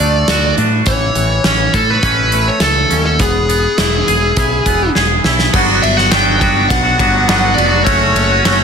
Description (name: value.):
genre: indie rock.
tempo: 103 BPM.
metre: 4/4.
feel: straight.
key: unclear.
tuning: A4 = 440 Hz.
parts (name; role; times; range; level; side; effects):
fuzz lead guitar; melody; 0.0-8.6 s; G#4 to G5; -17 LUFS; equal; distortion, plate reverb.
twangy electric guitar; riff; 0.0-8.6 s; E3 to A4; -15 LUFS; equal; double-tracked left and right.
growling picked electric bass; bass; 0.0-8.6 s; E1 to A2; -17 LUFS; equal; overdrive.
big rock drum kit; drums; 0.0-8.6 s; crash cymbal, hi-hat, kick drum, ride cymbal, snare drum; -16 LUFS; equal; soft clipping on snare.
room: light reverb.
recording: dense, heavily limited modern master.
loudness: -10 LUFS.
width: side -6 dB against mid.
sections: 0.0-5.5 A section; 5.5-8.6 B section.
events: drum fill 5.0-5.5.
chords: 0.0 D; 0.9 A; 3.2 E; 5.5 Gmaj7; 7.9 F#m.